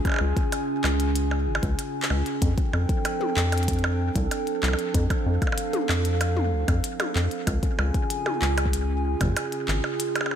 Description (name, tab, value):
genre	IDM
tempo	95 BPM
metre	4/4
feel	straight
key	unclear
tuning	A4 = 440 Hz
part	warbly tape-like pad	sustained chords	0.0-10.4 s	Db3 to Ab5	-28 LUFS	right 2 dB	chorus, built-in reverb, vintage 12-bit sampler grit
part	electronic kick drum	drums	0.1-9.4 s	none	-26 LUFS	left 1 dB	studio reverb
part	glitchy drum kit	drums	0.1-10.4 s	handclaps, hi-hat, percussion blips, toms	-29 LUFS	equal	studio reverb, analog delay
part	rubbery square bass	bass	0.2-9.8 s	Ab1 to F2	-24 LUFS	left 1 dB	none
room	light reverb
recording	none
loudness	-22 LUFS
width	side -9 dB against mid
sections	0.0-10.4 A section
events	kick drops out 10.0-10.4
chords	0.0 Db; 2.4 F6; 7.5 Db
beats	0.52 1.16 1.79 | 2.42 3.05 3.68 4.31 | 4.95 5.58 6.21 6.84 | 7.47 8.10 8.73 9.37 | 10.00